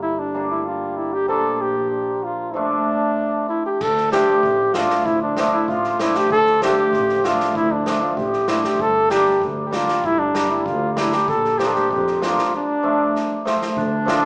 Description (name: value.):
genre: klezmer.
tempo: 96 BPM.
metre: 2/4.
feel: straight.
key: D minor.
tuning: A4 = 440 Hz.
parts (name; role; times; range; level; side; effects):
mellow flugelhorn; melody; 0.0-14.3 s; D4 to A4; -19 LUFS; equal; none.
cimbalom; accompaniment; 0.0-14.3 s; F3 to F4; -22 LUFS; equal; none.
rich double bass; bass; 0.0-14.1 s; G1 to F2; -31 LUFS; equal; none.
street-band drum kit; drums; 3.8-14.2 s; crash cymbal, kick drum, snare drum; -29 LUFS; equal; none.
warm clarinet; second line; 13.8-14.3 s; D4; -22 LUFS; right 1 dB; none.
room: moderate large studio reverb, RT60 1.1 s.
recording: band playing live in one room, small speaker sound.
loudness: -17 LUFS.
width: side -34 dB against mid.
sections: 0.0-3.8 A section; 3.8-13.8 A section.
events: drum fill 13.1-13.8.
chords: 0.0 Gm; 1.3 Bb; 2.6 Dm; 8.8 Gm; 11.3 Bb; 12.5 Dm.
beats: | 0.04 0.67 | 1.30 1.93 | 2.56 3.18 | 3.81 4.43 | 5.06 5.68 | 6.31 6.93 | 7.55 8.18 | 8.80 9.42 | 10.04 10.66 | 11.29 11.91 | 12.53 13.15 | 13.77.